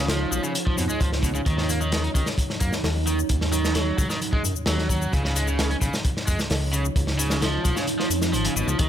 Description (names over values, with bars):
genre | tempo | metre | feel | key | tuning
breakbeat, breaks | 131 BPM | 4/4 | straight | unclear | A4 = 444 Hz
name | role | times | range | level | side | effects
deep dark ambient pad | sustained chords | 0.0-8.9 s | F3 to Db5 | -30 LUFS | right 2 dB | chorus, built-in reverb, sidechain pumping
crunchy overdriven guitar | riff | 0.0-8.9 s | Cb3 to Eb4 | -28 LUFS | equal | vintage 12-bit sampler grit, tape echo
fat analog bass | bass | 0.0-8.9 s | Ab1 to Gb2 | -26 LUFS | equal | none
crunchy breakbeat drum kit | drums | 0.1-8.9 s | hi-hat, kick drum, snare drum | -25 LUFS | equal | none
shaker | drums | 0.1-8.9 s | none | -32 LUFS | left 9 dB | overdrive
room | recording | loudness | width
light reverb | none | -21 LUFS | side -10 dB against mid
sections
0.0-8.9 A section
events
kick drops out 7.9-8.8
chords
0.0 Dbadd9; 1.5 Ebm7; 5.1 Dbadd9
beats
0.09 0.55 1.01 | 1.47 1.93 2.38 2.84 | 3.30 3.76 4.21 4.67 | 5.13 5.59 6.05 6.50 | 6.96 7.42 7.88 8.34 | 8.80